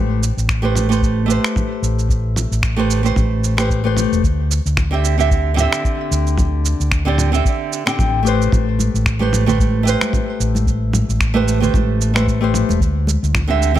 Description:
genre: sunset chillout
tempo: 112 BPM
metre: 4/4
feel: swing 57% on 16ths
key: A minor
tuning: A4 = 440 Hz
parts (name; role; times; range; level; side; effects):
- nylon-string guitar; accompaniment; 0.0-13.8 s; D3 to G5; -19 LUFS; moving between left 10 dB and right 7 dB; auto-pan, digital delay
- fingered electric bass; bass; 0.0-13.8 s; E1 to D2; -18 LUFS; equal; none
- dusty soul sampler-style drum kit; drums; 0.2-13.7 s; finger snaps, shaker, toms; -23 LUFS; right 1 dB; overdrive
- electronic kick drum; drums; 0.5-13.5 s; none; -19 LUFS; equal; none
- congas; percussion; 8.8-13.8 s; none; -26 LUFS; right 1 dB; none
room: small room ambience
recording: none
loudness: -15 LUFS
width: side -12 dB against mid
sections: 0.0-13.8 A section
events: none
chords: 0.0 Am9; 4.2 D9sus4; 8.5 Am9; 12.8 D9sus4

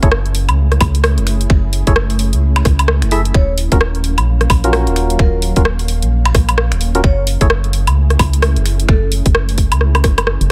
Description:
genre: UK garage, two-step garage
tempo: 130 BPM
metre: 4/4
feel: swing 61% on 16ths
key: unclear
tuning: A4 = 440 Hz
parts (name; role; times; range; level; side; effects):
- ethereal airy pad; sustained chords; 0.0-10.5 s; Gb3 to F5; -29 LUFS; equal; ensemble chorus, built-in reverb, sidechain pumping
- percussive organ stab; stabs; 0.0-7.5 s; Db4 to Fb5; -22 LUFS; equal; chorus, digital delay
- organ-like FM bass; bass; 0.0-10.5 s; Eb1 to Db2; -17 LUFS; equal; none
- electronic kick drum; drums; 0.0-10.2 s; none; -15 LUFS; equal; none
- garage drum kit; drums; 0.0-10.5 s; finger snaps, hi-hat, rim click, woodblock; -20 LUFS; equal; none
- vibraphone with medium mallets; melody; 3.3-9.0 s; A4 to Db5; -28 LUFS; equal; delay
room: digital ambience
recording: none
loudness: -14 LUFS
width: mono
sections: 0.0-10.5 A section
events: drum fill 9.8-10.5; kick drops out 10.3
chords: 0.0 Gbm7; 3.3 Ebm7; 7.0 Gbm7

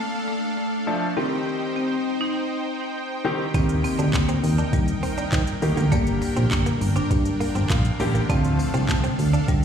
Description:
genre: dance-pop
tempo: 101 BPM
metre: 4/4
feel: straight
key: G minor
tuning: A4 = 441 Hz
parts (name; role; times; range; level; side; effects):
- marimba with medium hard mallets; melody; 0.0-9.6 s; G3 to Eb4; -27 LUFS; left 2 dB; tape echo, slapback echo
- soft supersaw; sustained chords; 0.0-9.6 s; D4 to G5; -31 LUFS; right 1 dB; sidechain pumping
- clear baby grand piano; accompaniment; 0.9-9.1 s; D3 to G5; -27 LUFS; left 2 dB; sidechain pumping, slapback echo
- direct-recorded clean electric guitar; riff; 3.5-9.5 s; Bb3 to Eb4; -32 LUFS; right 4 dB; wide subtle chorus, slapback echo
- solid FM bass; bass; 3.5-9.6 s; G1 to Eb3; -22 LUFS; right 1 dB; sidechain pumping
- smooth R&B drum kit; drums; 3.5-9.6 s; handclaps, hi-hat, kick drum, shaker; -25 LUFS; equal; none
- tambourine; percussion; 3.5-9.6 s; none; -45 LUFS; left 5 dB; none
room: light reverb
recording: live gig heard through the venue's PA, recital hall reverb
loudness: -20 LUFS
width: side -8 dB against mid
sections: 0.0-9.6 A section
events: grand piano fill 7.4-8.3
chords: 0.0 Dm; 1.2 Cm; 3.5 Eb; 5.9 Gm; 8.3 Dm

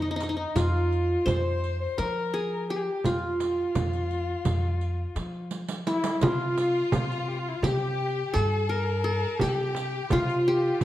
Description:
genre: Turkish makam ensemble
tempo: 170 BPM (eighths)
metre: 9/8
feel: straight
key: F makam nihavent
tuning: A4 = 441 Hz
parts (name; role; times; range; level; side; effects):
- qanun; melody; 0.0-10.8 s; Eb4 to C5; -28 LUFS; equal; none
- dark violin; second line; 0.0-10.8 s; Eb4 to C5; -33 LUFS; left 4 dB; none
- upright bass; bass; 0.0-10.7 s; F2 to F3; -30 LUFS; equal; none
- frame drum; percussion; 0.2-10.8 s; none; -30 LUFS; right 2 dB; none
- riq; percussion; 0.2-10.8 s; none; -37 LUFS; right 5 dB; none
- warm symphonic violin section; second line; 5.9-10.8 s; E4 to A4-40c; -35 LUFS; left 3 dB; none
room: moderate recital hall reverb, RT60 1.2 s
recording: none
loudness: -24 LUFS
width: side -14 dB against mid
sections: 0.0-6.2 A section; 6.2-10.8 B section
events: drum fill 5.5-6.2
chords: none

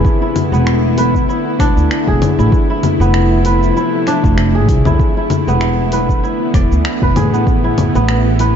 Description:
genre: organic downtempo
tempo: 97 BPM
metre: 4/4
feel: swing 55% on 16ths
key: E phrygian dominant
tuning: A4 = 440 Hz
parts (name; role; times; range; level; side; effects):
- bowed-like drone; sustained chords; 0.0-8.6 s; C3 to E4; -18 LUFS; equal; built-in reverb, sidechain pumping
- kora; arpeggios; 0.0-8.6 s; B3 to D5; -18 LUFS; equal; tape echo
- electronic kick drum; drums; 0.0-7.6 s; none; -15 LUFS; equal; overdrive
- afro-pop drum kit; drums; 0.1-8.5 s; cabasa, congas, finger snaps, hi-hat; -20 LUFS; left 3 dB; overdrive
- upright bass; bass; 0.5-8.6 s; E1 to D2; -15 LUFS; equal; sidechain pumping
room: light reverb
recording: nothing above 7.5 kHz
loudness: -11 LUFS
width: side -8 dB against mid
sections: 0.0-8.6 A section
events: none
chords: 0.0 E7sus4; 2.5 Fmaj7; 5.0 E7sus4; 7.5 Amadd9

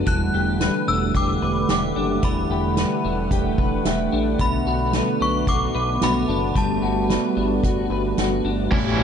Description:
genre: dream pop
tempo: 111 BPM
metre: 4/4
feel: straight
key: E minor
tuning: A4 = 441 Hz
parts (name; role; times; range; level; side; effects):
- warm analog pad; sustained chords; 0.0-9.0 s; D3 to A5; -24 LUFS; right 3 dB; chorus
- clean electric guitar; arpeggios; 0.0-9.0 s; A2 to B4; -26 LUFS; left 7 dB; ensemble chorus, ping-pong delay
- fat analog bass; bass; 0.0-9.0 s; E1 to B1; -26 LUFS; equal; none
- synth chime; melody; 0.1-7.1 s; A5 to F#6; -27 LUFS; left 2 dB; ensemble chorus, ping-pong delay
- soft-mallet drum kit; drums; 0.1-8.8 s; crash cymbal, hi-hat, kick drum, snare drum; -24 LUFS; equal; none
- celesta; texture; 0.1-6.8 s; E5 to A5; -40 LUFS; right 1 dB; none
- overdriven electric guitar; accompaniment; 8.7-9.0 s; A2 to E4; -23 LUFS; right 2 dB; tremolo, wide subtle chorus
room: light reverb, studio ambience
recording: dark, warm production, nothing above 10.3 kHz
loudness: -19 LUFS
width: side -7 dB against mid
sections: 0.0-8.7 A section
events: none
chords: 0.1 Em11; 4.4 Bm7; 6.6 Gmaj9

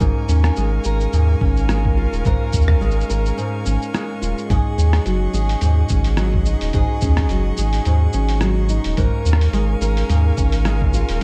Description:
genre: folktronica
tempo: 107 BPM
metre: 4/4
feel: swing 56% on 16ths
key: unclear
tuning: A4 = 440 Hz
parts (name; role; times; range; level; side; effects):
- clear string quartet; sustained chords; 0.0-11.2 s; Ab4 to Db6; -33 LUFS; equal; none
- fingerpicked steel-string acoustic guitar; arpeggios; 0.0-11.2 s; Ab2 to Bb4; -25 LUFS; equal; digital delay
- warm sub bass; bass; 0.0-11.2 s; Eb1 to Eb2; -20 LUFS; equal; none
- electronic kick drum; drums; 0.0-10.9 s; none; -22 LUFS; equal; none
- lo-fi sampler-style drum kit; drums; 0.0-11.2 s; cabasa, hi-hat, rim click; -31 LUFS; equal; none
room: little or no reverb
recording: dark, warm production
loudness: -18 LUFS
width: mono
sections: 0.0-11.2 A section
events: none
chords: 0.0 Bbm7; 4.5 Ab7sus4; 9.0 Bbm7

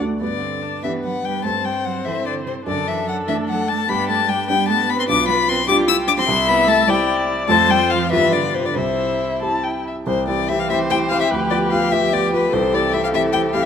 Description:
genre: quick classical-period movement for piano quintet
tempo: 98 BPM (dotted quarters)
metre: 6/8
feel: rubato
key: G major, C major from 5.1 s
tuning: A4 = 440 Hz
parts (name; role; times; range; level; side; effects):
- warm concert grand piano; accompaniment; 0.0-13.7 s; B1 to A4; -23 LUFS; right 2 dB; none
- rich violin; melody; 0.2-13.7 s; B4 to E6; -19 LUFS; left 8 dB; none
- rich cello; second line; 0.2-13.7 s; C3 to E4; -26 LUFS; right 7 dB; none
- rich viola; accompaniment; 0.2-13.7 s; B3 to C5; -26 LUFS; right 2 dB; none
- warm violin; second line; 0.8-13.7 s; G4 to A5; -25 LUFS; left 3 dB; none
room: moderate recital hall reverb, RT60 1.8 s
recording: close, detailed microphones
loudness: -16 LUFS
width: side -8 dB against mid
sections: 0.2-10.1 A section; 10.1-13.7 B section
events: none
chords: 0.2 G; 1.4 Am7/G; 2.7 D/F#; 3.9 G; 5.1 G7/B; 6.3 C; 7.5 F; 8.1 G7; 8.8 C; 11.3 G7/D; 12.5 C

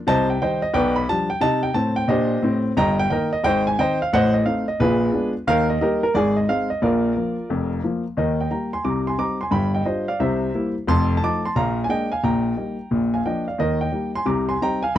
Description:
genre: jazz, stride piano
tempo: 178 BPM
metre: 4/4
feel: swing 65% on 8ths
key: Eb major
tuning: A4 = 440 Hz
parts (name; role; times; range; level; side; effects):
- warm grand piano; solo; 0.1-15.0 s; F1 to D6; -19 LUFS; equal; none
room: light reverb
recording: dry, close 1970s-style studio recording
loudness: -19 LUFS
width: side -12 dB against mid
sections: 0.0-8.2 A section; 8.2-15.0 B section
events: none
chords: 0.1 Cm; 0.7 G7/B; 1.4 Cm; 2.8 Eb/G; 3.4 Ab; 4.1 Adim; 4.8 Bb7b9; 5.5 Eb; 6.1 Ab; 6.8 Bb; 8.2 Eb; 8.8 Cm; 9.5 G5; 10.2 C7; 10.9 F7; 11.6 Bb7; 12.2 Eb/Bb; 12.9 Bb; 13.6 Eb; 14.3 Cm

